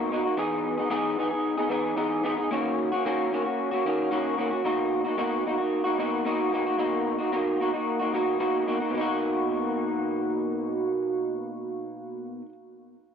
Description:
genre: indie pop.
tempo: 112 BPM.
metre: 4/4.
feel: straight.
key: B major.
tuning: A4 = 439 Hz.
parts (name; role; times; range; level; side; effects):
electric guitar through a small old amp; solo; 0.0-12.5 s; B2 to G#4; -25 LUFS; equal; analog chorus, warbly pitch drift, analog delay.
room: moderate studio reverb, RT60 0.6 s.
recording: none.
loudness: -24 LUFS.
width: side -7 dB against mid.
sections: 0.0-8.9 A section; 8.9-13.1 B section.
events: none.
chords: 0.4 Emaj7; 2.5 D#m7; 4.7 Bmaj7.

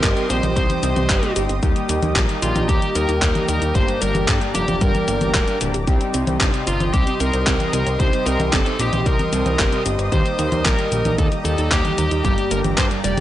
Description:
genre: italo disco.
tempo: 113 BPM.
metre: 4/4.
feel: straight.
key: unclear.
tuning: A4 = 437 Hz.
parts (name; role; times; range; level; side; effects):
dark smooth lead guitar; melody; 0.0-13.2 s; F4 to D5; -24 LUFS; equal; overdrive, analog delay.
lush unison pad; sustained chords; 0.0-13.2 s; G4 to Eb6; -28 LUFS; equal; chorus.
warbly dusty pluck; arpeggios; 0.0-13.2 s; Eb3 to C5; -29 LUFS; right 4 dB; chorus, tape echo.
analog synth brass; stabs; 0.0-13.2 s; G2 to A4; -26 LUFS; left 2 dB; chorus.
fat analog bass; bass; 0.0-13.2 s; D1 to G2; -23 LUFS; equal; none.
electronic kick drum; drums; 0.0-12.9 s; none; -20 LUFS; equal; none.
gated 80s digital drum machine; drums; 0.0-13.2 s; cabasa, congas, handclaps, hi-hat; -23 LUFS; equal; gated reverb, overdrive.
room: digital ambience.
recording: dry, gritty hardware recording, transformer saturation, nothing above 10.6 kHz.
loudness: -16 LUFS.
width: side -13 dB against mid.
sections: 0.0-13.2 A section.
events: none.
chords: 0.0 Cm; 1.6 Eb; 3.8 Gm; 5.9 Cm; 10.1 Eb; 12.2 Gm.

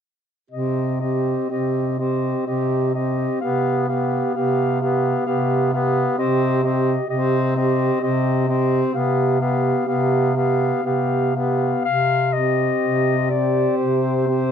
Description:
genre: classical, lyrical piece for single-reed quartet.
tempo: 57-66 BPM.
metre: 3/4.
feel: rubato.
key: C minor.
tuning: A4 = 439 Hz.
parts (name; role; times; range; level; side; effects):
warm clarinet; melody; 0.5-14.5 s; C5 to F5; -25 LUFS; left 10 dB; none.
warm alto saxophone; second line; 0.5-14.5 s; G4; -24 LUFS; right 4 dB; none.
mellow tenor saxophone; accompaniment; 0.5-14.5 s; B3 to C4; -23 LUFS; left 2 dB; none.
mellow bass clarinet; bass; 0.5-14.5 s; C3; -23 LUFS; right 2 dB; none.
room: little or no reverb.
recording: dark, warm production.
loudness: -18 LUFS.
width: side -8 dB against mid.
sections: 0.5-11.9 A section; 11.9-14.5 B section.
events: none.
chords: 0.5 Cm; 3.4 G7/C; 6.2 Cm; 8.9 G7/C; 11.9 Cm.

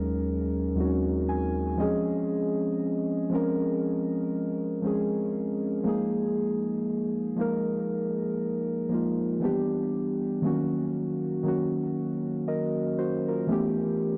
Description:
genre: R&B.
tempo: 59 BPM.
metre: 4/4.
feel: swing 58% on 16ths.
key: Eb dorian.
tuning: A4 = 440 Hz.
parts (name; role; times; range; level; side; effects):
muted felt-like synth keys; solo; 0.0-14.2 s; Eb2 to Ab5; -28 LUFS; equal; chorus, tape echo.
room: light reverb.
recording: dry, gritty hardware recording, cassette tape.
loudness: -28 LUFS.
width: mono.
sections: 0.0-14.2 A section.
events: synth keys fill 0.8-2.3.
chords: 0.0 Ab7sus4/Eb; 1.8 Dbmaj7; 5.9 Bb7sus4; 9.4 Em7; 10.4 Ebm7; 13.5 A9.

